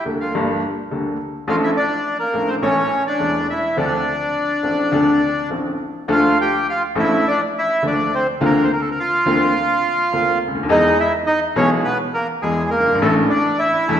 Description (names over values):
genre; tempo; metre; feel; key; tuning
tango; 104 BPM; 4/4; rubato; D minor; A4 = 439 Hz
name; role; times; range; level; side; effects
bandoneon; melody; 0.0-14.0 s; G#3 to G5; -18 LUFS; equal; none
clear upright piano; accompaniment; 0.1-14.0 s; E1 to A4; -20 LUFS; left 1 dB; none
room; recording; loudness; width
wet recital hall reverb, RT60 1.5 s; recorded in a church or concert hall; -16 LUFS; side -9 dB against mid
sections
0.0-6.1 A section; 6.1-14.0 B section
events
none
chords
0.0 Gmadd9; 1.5 Dm/A; 2.6 A; 3.8 Dm7; 6.1 Dm; 8.4 Bbadd9/D; 10.7 E; 13.0 Asus4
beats
0.34 0.92 | 1.49 2.06 2.63 3.21 | 3.78 4.36 4.94 5.52 | 6.10 6.68 7.26 7.83 | 8.40 8.98 9.55 10.13 | 10.70 11.28 11.86 12.43 | 13.01 13.59